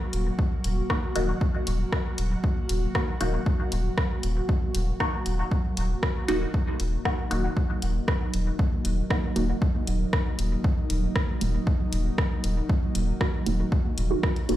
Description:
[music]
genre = dub techno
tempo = 117 BPM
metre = 4/4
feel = straight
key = Eb minor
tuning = A4 = 439 Hz
[part]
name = airy breathy pad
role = sustained chords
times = 0.0-14.6 s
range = Gb3 to Gb4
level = -33 LUFS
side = equal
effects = chorus, sidechain pumping
[part]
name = soft dub sub bass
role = bass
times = 0.1-14.6 s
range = Eb1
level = -27 LUFS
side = equal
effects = sidechain pumping
[part]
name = punchy analog drum machine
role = drums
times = 0.1-14.6 s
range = hi-hat, rim click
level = -32 LUFS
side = equal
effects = dub echo
[part]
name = electronic kick drum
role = drums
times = 0.4-14.3 s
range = none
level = -26 LUFS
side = equal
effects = overdrive
[part]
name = filtered dub chord stab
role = stabs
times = 0.9-14.6 s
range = Bb3 to Gb4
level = -31 LUFS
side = equal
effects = phaser, sidechain pumping, dub echo
[sound]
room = light reverb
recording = played on a big sound system in a bare room, stone room reverb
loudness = -24 LUFS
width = side -13 dB against mid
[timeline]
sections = 0.0-6.5 A section; 6.5-14.6 A section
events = filter sweep on synth stab 6.5-14.6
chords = 0.0 Ebm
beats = | 0.39 0.90 1.41 1.93 | 2.44 2.95 3.46 3.98 | 4.49 5.00 5.51 6.03 | 6.54 7.05 7.57 8.08 | 8.59 9.11 9.62 10.13 | 10.64 11.16 11.67 12.18 | 12.70 13.21 13.72 14.23

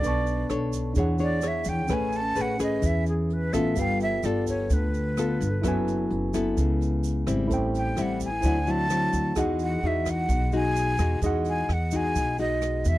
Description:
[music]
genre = bossa nova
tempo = 129 BPM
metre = 4/4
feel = straight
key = E major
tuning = A4 = 440 Hz
[part]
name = breathy jazz flute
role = melody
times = 0.0-13.0 s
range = G#4 to A5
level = -29 LUFS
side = right 1 dB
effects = none
[part]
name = nylon-string guitar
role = accompaniment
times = 0.0-13.0 s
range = A2 to C#5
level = -28 LUFS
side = left 3 dB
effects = none
[part]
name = tine electric piano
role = accompaniment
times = 0.0-13.0 s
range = C#4 to C#6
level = -33 LUFS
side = right 4 dB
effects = none
[part]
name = upright bass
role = bass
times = 0.0-13.0 s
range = F#1 to E2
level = -28 LUFS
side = equal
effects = none
[part]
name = jazz brush drum kit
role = drums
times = 0.0-13.0 s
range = hi-hat, kick drum, rim click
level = -34 LUFS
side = equal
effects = none
[part]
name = tube shaker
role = percussion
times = 0.0-13.0 s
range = none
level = -44 LUFS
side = right 16 dB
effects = none
[sound]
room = little or no reverb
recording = dry, close 1970s-style studio recording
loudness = -23 LUFS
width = side -16 dB against mid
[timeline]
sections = 0.0-13.0 A section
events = flute solo 0.0-13.0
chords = 0.0 Bm9; 1.0 E13; 1.9 Amaj9; 3.8 G9; 5.6 F#m11; 7.5 Am7; 8.4 D9; 9.4 Emaj9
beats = | 0.04 0.50 0.97 1.44 | 1.90 2.37 2.84 3.31 | 3.77 4.24 4.71 5.17 | 5.64 6.11 6.57 7.04 | 7.51 7.97 8.44 8.90 | 9.37 9.84 10.30 10.77 | 11.23 11.70 12.16 12.63

